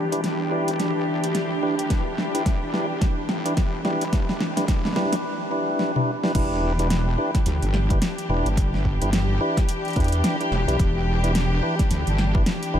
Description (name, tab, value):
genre	glitch hop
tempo	108 BPM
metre	4/4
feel	swing 59% on 16ths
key	E minor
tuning	A4 = 440 Hz
part	warm studio string section	sustained chords	0.0-12.8 s	E3 to G4	-29 LUFS	left 2 dB	vintage 12-bit sampler grit, sidechain pumping, low-pass filter
part	wobble bass	bass	0.0-12.8 s	E1 to E2	-25 LUFS	equal	chorus, high-pass filter
part	deep dark ambient pad	texture	0.0-5.2 s	D4 to E5	-32 LUFS	right 1 dB	chorus, built-in reverb, sidechain pumping
part	tonewheel organ	stabs	0.1-12.8 s	D4 to B4	-27 LUFS	equal	stopped rotary speaker, vintage 12-bit sampler grit, sidechain pumping, low-pass filter, analog delay
part	pop drum kit	drums	0.1-12.7 s	crash cymbal, hi-hat, snare drum, toms	-28 LUFS	equal	overdrive
part	electronic kick drum	drums	1.9-12.4 s	none	-22 LUFS	equal	overdrive
room	moderate huge ambient reverb, RT60 8.5 s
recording	dreamy mix soaked in reverb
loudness	-20 LUFS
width	side -10 dB against mid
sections	0.0-6.3 A section; 6.3-12.8 B section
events	build-up 0.0-6.3; drum fill 0.0-5.2, 5.8-6.3; drop 6.3-12.8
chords	0.0 Em7